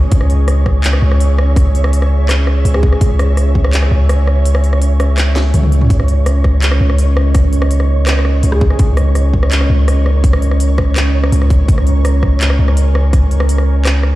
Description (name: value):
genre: half-time drum and bass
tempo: 166 BPM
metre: 4/4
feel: half-time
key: C# dorian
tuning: A4 = 441 Hz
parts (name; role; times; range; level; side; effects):
- deep dark ambient pad; sustained chords; 0.0-14.2 s; C#4 to G#5; -23 LUFS; right 2 dB; chorus, built-in reverb, sidechain pumping
- long sustained 808-style bass; bass; 0.0-14.2 s; C#2; -11 LUFS; equal; tube saturation
- flickering grainy texture; texture; 0.0-14.2 s; C#5; -25 LUFS; right 3 dB; built-in reverb
- drum and bass drum kit; drums; 0.1-14.1 s; handclaps, hi-hat, rim click, snare drum, toms; -20 LUFS; equal; small room ambience
- electronic kick drum; drums; 0.1-3.6, 5.9-13.2 s; none; -12 LUFS; equal; small room ambience
- breathy flute-like synth lead; melody; 2.7-3.1, 8.5-8.9 s; G#4; -24 LUFS; equal; ensemble chorus, digital delay
room: little or no reverb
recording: played on a big sound system in a bare room, large studio reverb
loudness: -10 LUFS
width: side -17 dB against mid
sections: 0.0-14.2 A section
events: kick drops out 4.5-5.9; drum fill 5.4-5.9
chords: 0.0 C#m